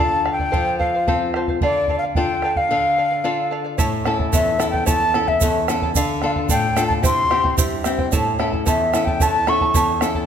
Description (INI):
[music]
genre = andean folk, Andean ensemble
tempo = 111 BPM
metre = 2/4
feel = straight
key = D minor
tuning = A4 = 438 Hz
[part]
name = wooden flute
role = melody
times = 0.0-10.0 s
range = D5 to C#6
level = -20 LUFS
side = left 1 dB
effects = none
[part]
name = charango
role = accompaniment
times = 0.0-10.3 s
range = E4 to A5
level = -24 LUFS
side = right 4 dB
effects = none
[part]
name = flamenco guitar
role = accompaniment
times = 0.0-10.3 s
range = E2 to A4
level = -24 LUFS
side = left 6 dB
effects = none
[part]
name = bombo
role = percussion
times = 0.3-10.3 s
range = none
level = -23 LUFS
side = right 2 dB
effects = none
[part]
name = egg shaker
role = percussion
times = 3.8-10.1 s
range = none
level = -29 LUFS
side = right 9 dB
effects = none
[sound]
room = moderate recital hall reverb, RT60 1.6 s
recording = none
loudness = -17 LUFS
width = side -8 dB against mid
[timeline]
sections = 0.0-3.8 A section; 3.8-10.3 B section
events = none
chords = 0.0 Dm; 0.5 F; 1.6 Dm; 3.8 A; 6.0 Dm; 7.0 C; 8.1 A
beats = | 0.53 1.08 | 1.62 2.16 | 2.71 3.25 | 3.79 4.33 | 4.88 5.42 | 5.96 6.50 | 7.04 7.58 | 8.12 8.66 | 9.21 9.75